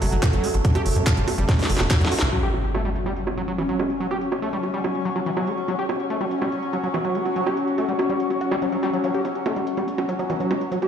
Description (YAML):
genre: psychedelic trance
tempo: 143 BPM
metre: 4/4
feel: straight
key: F# phrygian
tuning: A4 = 440 Hz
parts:
  - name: bubbling stepped-filter texture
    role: sustained chords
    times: 0.0-10.9 s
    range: F#3 to C#4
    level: -28 LUFS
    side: left 1 dB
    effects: chorus, built-in reverb, sidechain pumping
  - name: overdriven acid bass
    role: riff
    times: 0.0-10.9 s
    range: E3 to G4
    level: -28 LUFS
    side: moving between left 4 dB and right 3 dB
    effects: distortion, auto-pan, sidechain pumping, tape echo
  - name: tight sequencer bass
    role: bass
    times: 0.0-2.3 s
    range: E1 to F#2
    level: -22 LUFS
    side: equal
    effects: tube saturation
  - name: garage drum kit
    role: drums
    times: 0.0-10.9 s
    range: bongos, handclaps, hi-hat, snare drum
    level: -28 LUFS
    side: right 3 dB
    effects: low-pass filter on hats, low-pass filter on perc, low-pass filter on snare, low-pass filter on room
  - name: warbly tape-like pad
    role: texture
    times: 0.0-10.9 s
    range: C#4 to C#6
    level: -28 LUFS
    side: left 2 dB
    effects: chorus, built-in reverb, sidechain pumping
  - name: electronic kick drum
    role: drums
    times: 0.2-2.0 s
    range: none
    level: -21 LUFS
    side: equal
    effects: none
  - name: impact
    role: sound effects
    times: 2.3-4.0 s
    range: none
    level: -28 LUFS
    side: equal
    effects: none
  - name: resonant blip pluck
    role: second line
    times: 9.0-10.4 s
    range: A3 to B3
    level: -40 LUFS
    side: left 2 dB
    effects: none
room: moderate plate reverb, RT60 2.1 s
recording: played on a big sound system in a bare room, large studio reverb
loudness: -21 LUFS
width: side -8 dB against mid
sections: 0.0-2.3 A section; 2.3-10.9 B section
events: drum fill 1.5-2.3; band accent 2.2; impact 2.3-4.0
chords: 0.0 F#5